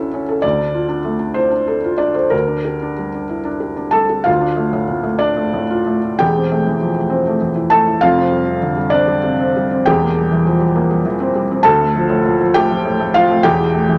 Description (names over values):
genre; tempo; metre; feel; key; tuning
neoclassical minimalist piano; 60-68 BPM (dotted quarters); 6/8; rubato; D minor; A4 = 442 Hz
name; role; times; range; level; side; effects
felt-muted upright piano; solo; 0.0-14.0 s; E1 to A5; -16 LUFS; equal; none
room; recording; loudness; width
moderate studio reverb, RT60 0.8 s; none; -16 LUFS; mono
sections
0.0-4.3 A section; 4.3-14.0 B section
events
none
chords
0.4 Dm; 2.3 Gm/D; 4.3 Dm; 6.2 Am7/E; 8.0 Fsus2; 9.9 C7/E; 11.6 Dm; 13.4 A7(no3)/E